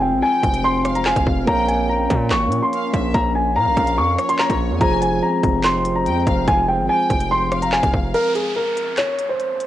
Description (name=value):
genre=hip hop, drill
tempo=144 BPM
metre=4/4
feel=half-time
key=F minor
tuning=A4 = 440 Hz
part: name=dark baby grand piano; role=melody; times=0.0-9.7 s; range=Ab4 to Db6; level=-19 LUFS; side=left 1 dB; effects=cassette tape
part: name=warbly tape-like pad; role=sustained chords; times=0.0-8.1 s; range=F3 to Db4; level=-25 LUFS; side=left 2 dB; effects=chorus, built-in reverb, cassette tape
part: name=distorted 808-style bass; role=bass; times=0.0-8.1 s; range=F1 to Bb2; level=-23 LUFS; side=equal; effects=distortion
part: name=warm symphonic violin section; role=second line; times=0.2-8.1 s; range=Db5 to Ab5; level=-30 LUFS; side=equal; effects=cassette tape, analog delay
part: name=drill drum kit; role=drums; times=0.4-9.7 s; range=handclaps, hi-hat, kick drum, rim click, snare drum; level=-23 LUFS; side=equal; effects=vintage 12-bit sampler grit, cassette tape
part: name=mellow tine electric piano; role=accompaniment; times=1.5-8.2 s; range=F3 to F5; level=-25 LUFS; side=right 3 dB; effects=medium stereo tremolo, cassette tape
part: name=downlifter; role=sound effects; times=8.1-9.7 s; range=none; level=-30 LUFS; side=right 1 dB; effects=none
room=light reverb, digital ambience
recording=home recording on cassette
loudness=-16 LUFS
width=side -13 dB against mid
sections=0.0-8.1 A section; 8.1-9.7 B section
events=break 8.1-9.7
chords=0.0 Fm; 1.5 Bbm; 4.8 Fm; 8.1 N.C.